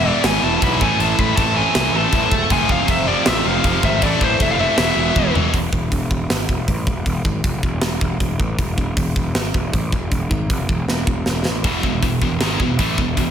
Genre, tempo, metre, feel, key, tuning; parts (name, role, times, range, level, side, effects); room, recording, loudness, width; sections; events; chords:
heavy metal; 157 BPM; 4/4; straight; A4 = 440 Hz
high-gain lead guitar; melody; 0.0-5.3 s; C5 to B5; -21 LUFS; left 2 dB; distortion, slapback echo, digital delay
clear symphonic string section; sustained chords; 0.0-5.5, 11.6-13.3 s; G#3 to F5; -31 LUFS; equal
heavy high-gain guitar; riff; 0.0-5.5, 11.6-13.3 s; E2 to A3; -22 LUFS; left 9 dB; distortion, slapback echo
heavy high-gain guitar; riff; 0.0-5.5, 11.6-13.3 s; E2 to A3; -23 LUFS; right 11 dB; distortion, slapback echo
fuzz picked electric bass; bass; 0.0-13.3 s; E1 to C2; -22 LUFS; equal; overdrive
tight metal drum kit; drums; 0.2-13.3 s; crash cymbal, hi-hat, kick drum, snare drum, toms; -20 LUFS; equal
light reverb, studio ambience; -16 LUFS; side -8 dB against mid
0.0-5.5 A section; 5.5-13.3 B section
drum fill 5.2-5.5, 10.9-11.7
0.0 E; 0.8 Am; 2.5 F; 4.0 Am; 4.8 E